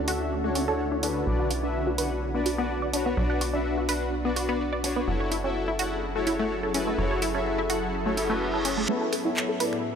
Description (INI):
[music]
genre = progressive house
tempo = 126 BPM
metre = 4/4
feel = straight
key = unclear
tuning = A4 = 439 Hz
[part]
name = shimmering ambient pad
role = sustained chords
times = 0.0-10.0 s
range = A2 to E5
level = -32 LUFS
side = equal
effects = chorus, built-in reverb
[part]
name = tight sequencer bass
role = bass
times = 0.0-8.9 s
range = F#1 to D2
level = -32 LUFS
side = right 1 dB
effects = none
[part]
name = tight sequenced synth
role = arpeggios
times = 0.1-9.6 s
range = F#3 to A5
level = -30 LUFS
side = equal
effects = chorus, ping-pong delay
[part]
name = soft supersaw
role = stabs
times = 0.1-9.7 s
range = B3 to F#5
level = -29 LUFS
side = left 2 dB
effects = cassette tape, low-pass filter, ping-pong delay
[part]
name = pop drum kit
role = drums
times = 0.1-9.8 s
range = finger snaps, handclaps, hi-hat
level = -31 LUFS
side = right 3 dB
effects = small room reverb
[part]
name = reverse cymbal and riser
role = sound effects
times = 8.2-10.0 s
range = none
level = -35 LUFS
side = right 2 dB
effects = none
[sound]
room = light reverb, digital ambience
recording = none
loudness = -24 LUFS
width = side -7 dB against mid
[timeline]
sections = 0.0-8.9 A section; 8.9-10.0 B section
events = filter sweep on synth arpeggio sound 0.0-8.9, 8.9-10.0; filter sweep on supersaw synth 0.0-8.9, 8.9-10.0; reverse cymbal 8.2-8.9; build-up 8.9-10.0; riser 8.9-10.0; filter sweep 8.9-10.0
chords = 0.0 Dmaj7; 1.3 Bm; 5.1 F#m7; 8.9 Asus2